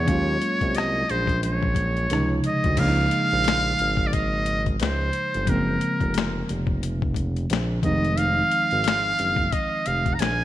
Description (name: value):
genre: R&B, neo-soul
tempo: 89 BPM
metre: 4/4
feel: swing 60% on 16ths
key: Db major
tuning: A4 = 440 Hz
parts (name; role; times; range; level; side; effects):
- trumpet with metal mute; melody; 0.0-10.4 s; Bb4 to Bb5; -24 LUFS; right 1 dB; slapback echo
- tine electric piano; accompaniment; 0.0-10.4 s; C3 to F4; -27 LUFS; equal; none
- smooth synth bass; bass; 0.0-10.4 s; F1 to Eb2; -26 LUFS; right 1 dB; none
- boom bap sampler-style drum kit; drums; 0.1-10.4 s; crash cymbal, finger snaps, hi-hat, kick drum, rim click, snare drum; -27 LUFS; left 3 dB; none
room: light reverb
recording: 1960s-style stereo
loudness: -20 LUFS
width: side -13 dB against mid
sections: 0.0-2.8 A section; 2.8-10.4 B section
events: none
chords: 0.1 Ebm11; 2.1 Dbmaj9; 2.8 Db69; 5.5 Gbmaj9#11; 7.8 Fm7